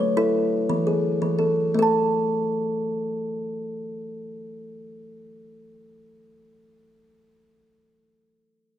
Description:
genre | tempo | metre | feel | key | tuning
southern african traditional | 114 BPM (dotted quarters) | 12/8 | straight | unclear | A4 = 445 Hz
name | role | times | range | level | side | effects
kalimba | solo | 0.0-6.6 s | E3 to A5 | -22 LUFS | equal | none
room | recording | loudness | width
moderate recital hall reverb, RT60 1.5 s | none | -21 LUFS | side -11 dB against mid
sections
0.0-1.8 A section; 1.8-6.0 B section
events
none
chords
0.0 A; 0.7 E; 1.8 N.C.

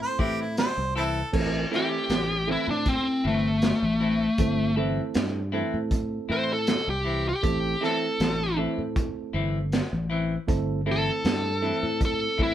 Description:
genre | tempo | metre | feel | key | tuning
straight-eighth soul blues | 79 BPM | 4/4 | straight | A minor | A4 = 441 Hz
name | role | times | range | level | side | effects
warm harmonica | second line | 0.0-1.3 s | C4 to C5 | -28 LUFS | right 2 dB | none
mellow reed electric piano | accompaniment | 0.0-12.5 s | A3 to A4 | -32 LUFS | right 7 dB | none
fingered electric bass | bass | 0.0-12.5 s | G1 to A2 | -30 LUFS | left 1 dB | none
semi-hollow electric guitar | stabs | 0.2-12.5 s | E3 to E4 | -31 LUFS | left 4 dB | none
crunchy breakbeat drum kit | drums | 0.2-12.5 s | crash cymbal, hi-hat, kick drum, snare drum | -27 LUFS | equal | none
smooth overdriven lead guitar | melody | 1.8-12.5 s | A3 to C5 | -25 LUFS | left 1 dB | none
room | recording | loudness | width
light reverb | band playing live in one room | -23 LUFS | side -11 dB against mid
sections
0.0-1.3 A section; 1.3-12.5 B section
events
lead electric guitar solo 1.3-12.5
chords
0.0 Am

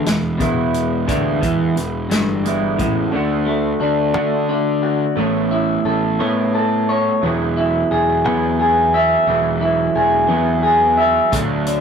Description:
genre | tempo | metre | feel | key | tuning
indie rock | 59 BPM (dotted quarters) | 6/8 | straight | E major, E mixolydian from 3.1 s | A4 = 440 Hz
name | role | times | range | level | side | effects
electric guitar through a small old amp | riff | 0.0-11.8 s | E2 to E5 | -17 LUFS | left 1 dB | none
electric guitar through a small old amp | riff | 0.0-11.8 s | D3 to C#5 | -22 LUFS | right 6 dB | none
fuzz picked electric bass | bass | 0.0-11.8 s | E1 to D3 | -24 LUFS | left 1 dB | overdrive
vintage drum kit | drums | 0.1-2.9, 11.3-11.8 s | hi-hat, kick drum, snare drum | -23 LUFS | left 1 dB | none
room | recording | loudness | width
moderate studio reverb, RT60 0.5 s | rough rehearsal-room recording, warm saturation | -15 LUFS | side -7 dB against mid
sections
0.0-3.1 A section; 3.1-11.8 B section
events
none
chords
0.0 E; 3.1 D; 5.2 Aadd9; 7.2 Eadd9

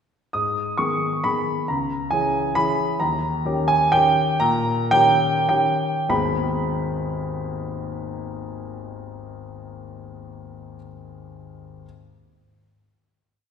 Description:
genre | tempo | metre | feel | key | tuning
classical, piano waltz | 96-142 BPM | 3/4 | rubato | G# minor | A4 = 440 Hz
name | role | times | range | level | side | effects
clear grand piano | solo | 0.3-11.9 s | G#1 to D#6 | -21 LUFS | equal | none
room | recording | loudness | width
wet recital hall reverb, RT60 1.6 s | recorded in a church or concert hall | -19 LUFS | side -7 dB against mid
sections
0.3-6.1 A section; 6.1-9.7 final chord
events
slowing down 2.3-6.1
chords
0.3 G#m; 1.7 C#m; 3.0 D#7; 6.1 G#m

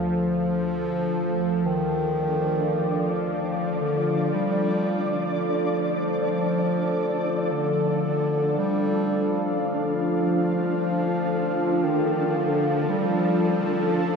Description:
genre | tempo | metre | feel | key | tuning
dark ambient drone | free time | none | none | D phrygian | A4 = 441 Hz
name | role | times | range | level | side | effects
warm bass clarinet | melody | 0.0-14.0 s | D3 to G3 | -26 LUFS | left 1 dB | ping-pong delay
dark analog pad | sustained chords | 0.0-14.2 s | D4 to F5 | -27 LUFS | equal | chorus
bowed-like drone | drone | 0.0-14.2 s | D2 to F3 | -28 LUFS | equal | built-in reverb
flickering grainy texture | texture | 2.2-14.2 s | D4 to D5 | -30 LUFS | equal | built-in reverb
room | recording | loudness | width
wet cathedral reverb, RT60 5.8 s | nothing above 10.3 kHz | -22 LUFS | side -5 dB against mid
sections
0.0-1.7 A section; 1.7-14.2 B section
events
none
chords
0.0 Dm

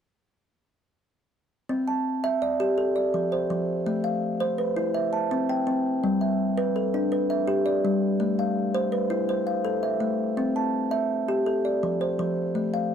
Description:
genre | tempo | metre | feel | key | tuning
southern african traditional | 110 BPM (dotted quarters) | 12/8 | straight | C major | A4 = 439 Hz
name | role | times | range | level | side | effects
kalimba | solo | 1.7-12.9 s | F3 to A5 | -23 LUFS | equal | none
room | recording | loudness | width
light reverb | none | -23 LUFS | side -8 dB against mid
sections
1.7-12.9 A section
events
none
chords
1.7 C; 2.8 F; 3.9 Am; 4.9 C; 6.0 G; 8.2 Am; 10.4 C; 11.5 F

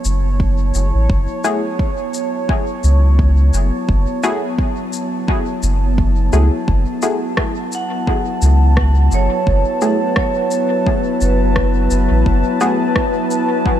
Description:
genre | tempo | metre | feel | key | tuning
ambient dub | 86 BPM | 4/4 | swing 56% on 16ths | F# minor | A4 = 439 Hz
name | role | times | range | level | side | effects
warbly tape-like pad | sustained chords | 0.0-13.8 s | F#3 to A5 | -20 LUFS | left 1 dB | chorus, built-in reverb
soft dub sub bass | bass | 0.0-12.4 s | F#1 to C#2 | -13 LUFS | equal | none
electronic shaker and rim click | drums | 0.0-13.5 s | none | -25 LUFS | equal | overdrive, small room reverb, dub echo
electronic kick drum | drums | 0.4-13.8 s | none | -19 LUFS | equal | small room reverb
filtered dub chord stab | stabs | 1.4-12.8 s | A3 to G#4 | -23 LUFS | left 1 dB | chorus, dub echo
vibraphone with medium hard mallets | arpeggios | 7.7-13.8 s | C#5 to F#5 | -23 LUFS | right 4 dB | vintage 12-bit sampler grit, dub echo
room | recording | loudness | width
light reverb, digital ambience | none | -14 LUFS | side -11 dB against mid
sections
0.0-13.8 A section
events
none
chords
0.0 F#m9

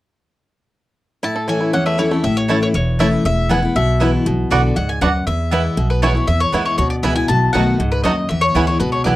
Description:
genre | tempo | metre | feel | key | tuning
bluegrass | 238 BPM | 4/4 | straight | A major | A4 = 440 Hz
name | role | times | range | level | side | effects
bluegrass banjo | melody | 1.2-9.1 s | A3 to A4 | -22 LUFS | right 3 dB | slapback echo
mandolin | melody | 1.2-9.2 s | B4 to A5 | -21 LUFS | left 2 dB | none
picked steel-string acoustic guitar | accompaniment | 1.2-9.2 s | E2 to F#4 | -19 LUFS | left 2 dB | none
upright bass | bass | 2.2-9.2 s | E1 to E2 | -19 LUFS | right 1 dB | none
mandolin | stabs | 2.5-9.2 s | A3 to A5 | -21 LUFS | right 6 dB | none
room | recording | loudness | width
light reverb | dry, close 1970s-style studio recording | -14 LUFS | side -16 dB against mid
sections
1.2-2.2 A section; 2.2-9.2 B section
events
none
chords
1.2 A; 3.2 E; 4.3 Bm; 5.3 E; 7.3 B7; 8.3 E

